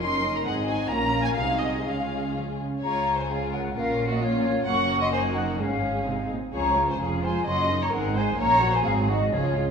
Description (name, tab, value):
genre	quick classical-period movement for symphony orchestra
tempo	121-134 BPM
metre	2/4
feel	rubato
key	Db major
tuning	A4 = 440 Hz
part	muted chamber violin section	melody	0.0-9.7 s	Db4 to C6	-31 LUFS	left 1 dB	none
part	muted chamber violin section	second line	0.0-9.7 s	F4 to Gb5	-30 LUFS	left 2 dB	none
part	muted chamber viola section	accompaniment	0.0-9.7 s	Eb3 to F4	-30 LUFS	right 1 dB	none
part	muted chamber cello section	bass	0.0-9.7 s	Db2 to F3	-31 LUFS	right 2 dB	none
part	muted chamber double bass section	bass	0.0-9.7 s	F1 to Db2	-31 LUFS	right 2 dB	none
part	mellow flute section	second line	2.8-9.7 s	Db5 to Db6	-26 LUFS	left 2 dB	none
room	wet scoring stage reverb, RT60 1.8 s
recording	minimal, uncompressed stereo recording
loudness	-22 LUFS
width	side -6 dB against mid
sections	0.0-2.8 A section; 2.8-9.7 A section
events	none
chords	0.0 Ebm7/Gb; 0.5 Ab; 0.9 Bbm; 1.4 Ab7/C; 1.9 Db; 3.8 Bbm; 4.7 Gb; 5.1 Ebm/Gb; 5.6 Db/Ab; 6.1 Ab; 6.5 Db; 7.0 Db/F; 7.5 Ebm7/Gb; 7.9 Ab; 8.4 Gb/Bb; 8.8 Ab7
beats	| 0.01 0.47 | 0.91 1.38 | 1.86 2.35 | 2.83 3.29 | 3.75 4.21 | 4.66 5.12 | 5.59 6.07 | 6.54 7.00 | 7.46 7.92 | 8.37 8.83 | 9.32